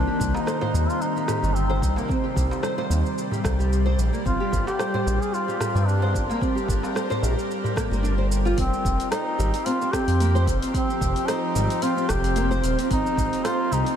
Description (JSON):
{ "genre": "organic downtempo", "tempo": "111 BPM", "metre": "4/4", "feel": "swing 55% on 16ths", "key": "unclear", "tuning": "A4 = 439 Hz", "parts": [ { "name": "warm duduk", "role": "melody", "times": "0.0-14.0 s", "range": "C4 to Ab4", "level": "-28 LUFS", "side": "equal", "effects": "ping-pong delay" }, { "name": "bowed-like drone", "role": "sustained chords", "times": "0.0-14.0 s", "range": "C3 to D5", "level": "-29 LUFS", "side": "left 1 dB", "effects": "built-in reverb, sidechain pumping" }, { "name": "nylon-string guitar", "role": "arpeggios", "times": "0.0-13.9 s", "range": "G3 to C5", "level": "-29 LUFS", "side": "right 1 dB", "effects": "ensemble chorus, tape echo" }, { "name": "smooth synth bass", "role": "bass", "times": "0.0-13.8 s", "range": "Eb1 to G2", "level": "-23 LUFS", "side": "equal", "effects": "tube saturation" }, { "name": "drifting glass-harmonics texture", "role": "texture", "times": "0.0-14.0 s", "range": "C4 to C5", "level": "-36 LUFS", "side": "equal", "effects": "chorus, built-in reverb" }, { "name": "deep house drum kit", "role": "drums", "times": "0.2-14.0 s", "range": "hi-hat, rim click, shaker", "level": "-34 LUFS", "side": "right 1 dB", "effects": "overdrive" }, { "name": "electronic kick drum", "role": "drums", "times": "0.2-13.3 s", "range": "none", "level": "-28 LUFS", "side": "equal", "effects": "overdrive" }, { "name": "darbuka", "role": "percussion", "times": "0.3-7.9 s", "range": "none", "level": "-35 LUFS", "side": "right 2 dB", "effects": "none" } ], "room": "moderate huge ambient reverb, RT60 8.9 s", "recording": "dreamy mix soaked in reverb", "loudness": "-21 LUFS", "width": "side -9 dB against mid", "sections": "0.0-8.6 A section; 8.6-14.0 B section", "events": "none", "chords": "0.0 Cm; 4.3 Gm7; 8.6 Fsus2; 12.9 Abadd9" }